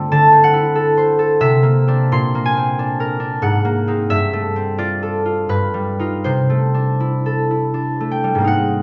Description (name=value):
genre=classical, solo harp piece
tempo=78-94 BPM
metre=3/4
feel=rubato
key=C lydian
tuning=A4 = 441 Hz
part: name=concert harp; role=solo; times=0.0-8.8 s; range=G2 to C6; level=-17 LUFS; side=equal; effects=none
room=wet recital hall reverb, RT60 1.5 s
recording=heard from further back in the room, nothing above 7.7 kHz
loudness=-17 LUFS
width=mono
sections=0.0-8.5 A section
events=none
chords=0.1 D9; 1.4 C9; 2.1 Bb9; 3.4 Ab9; 4.1 G11; 5.5 Gaug7; 6.2 C69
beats=| 0.12 0.77 1.42 | 2.12 2.78 3.43 | 4.10 4.78 5.49 | 6.24 7.00 7.75 | 8.49